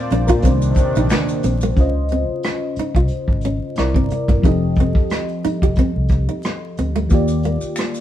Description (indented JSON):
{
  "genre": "R&B, neo-soul",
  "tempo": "90 BPM",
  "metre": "4/4",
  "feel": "straight",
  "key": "unclear",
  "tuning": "A4 = 441 Hz",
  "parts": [
    { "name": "mellow FM electric piano", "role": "accompaniment", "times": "0.0-8.0 s", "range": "C3 to F5", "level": "-22 LUFS", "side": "left 2 dB", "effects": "chorus" },
    { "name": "warm analog pad", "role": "sustained chords", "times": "0.0-1.8 s", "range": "Bb2 to A5", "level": "-24 LUFS", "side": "right 1 dB", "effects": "chorus" },
    { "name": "nylon-string guitar", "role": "second line", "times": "0.1-7.8 s", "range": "A3 to G4", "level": "-22 LUFS", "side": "right 2 dB", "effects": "none" },
    { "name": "vintage muted fingered electric bass", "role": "bass", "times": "0.1-7.7 s", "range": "F1 to Bb2", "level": "-20 LUFS", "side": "equal", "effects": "none" },
    { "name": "vintage brush drum kit", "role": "drums", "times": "0.1-8.0 s", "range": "hi-hat, kick drum, rim click, snare drum", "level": "-18 LUFS", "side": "equal", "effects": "none" },
    { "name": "maracas and finger snaps", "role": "percussion", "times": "0.3-1.8, 7.1-8.0 s", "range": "none", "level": "-35 LUFS", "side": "left 2 dB", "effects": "none" }
  ],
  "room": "light reverb",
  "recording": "band playing live in one room, vinyl crackle",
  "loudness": "-16 LUFS",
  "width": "side -12 dB against mid",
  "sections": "0.0-1.8 A section; 1.8-8.0 B section",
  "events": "FM electric piano solo 0.0-1.8",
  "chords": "0.4 Cm9; 1.8 Dbmaj9; 3.8 C9; 4.4 F9; 7.1 Ebmaj9"
}